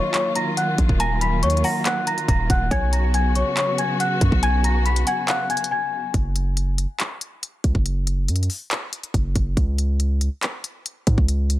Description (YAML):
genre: hip hop, trap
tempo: 140 BPM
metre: 4/4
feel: half-time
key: F# major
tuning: A4 = 439 Hz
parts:
  - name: worn celesta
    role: melody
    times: 0.0-6.1 s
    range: C#5 to B6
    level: -23 LUFS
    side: left 2 dB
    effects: digital delay
  - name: muted studio string section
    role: sustained chords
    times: 0.0-6.1 s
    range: C#3 to F#4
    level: -26 LUFS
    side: equal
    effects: none
  - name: trap drum kit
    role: drums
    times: 0.1-11.6 s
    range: handclaps, hi-hat, kick drum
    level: -23 LUFS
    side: equal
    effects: none
  - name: hard-hitting 808-style bass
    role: bass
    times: 0.8-11.6 s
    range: D#1 to G#2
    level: -20 LUFS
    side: equal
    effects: none
  - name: mallet-like synth pluck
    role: second line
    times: 1.0-6.1 s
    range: C#5 to G#5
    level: -32 LUFS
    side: left 2 dB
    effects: chorus, digital delay
room: little or no reverb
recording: dense, heavily limited modern master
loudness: -19 LUFS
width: side -15 dB against mid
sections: 0.0-6.1 A section; 6.1-11.6 B section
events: break 5.7-6.1, 6.1-11.6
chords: 0.0 D#madd9; 2.7 Bsus2; 6.1 F#5; 9.6 C#5